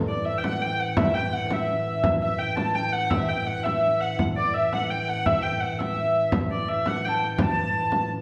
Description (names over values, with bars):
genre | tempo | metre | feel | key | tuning
medieval dance | 112 BPM (dotted quarters) | 6/8 | straight | unclear | A4 = 440 Hz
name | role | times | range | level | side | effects
pipe organ, stopped flute | drone | 0.0-8.2 s | A2 to E3 | -33 LUFS | equal | none
warm hurdy-gurdy | melody | 0.1-8.1 s | D5 to A5 | -27 LUFS | equal | none
frame drum | percussion | 0.4-8.1 s | none | -31 LUFS | equal | none
room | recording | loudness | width
wet recital hall reverb, RT60 1.4 s | heard from further back in the room | -25 LUFS | mono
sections
0.0-8.2 A section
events
none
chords
none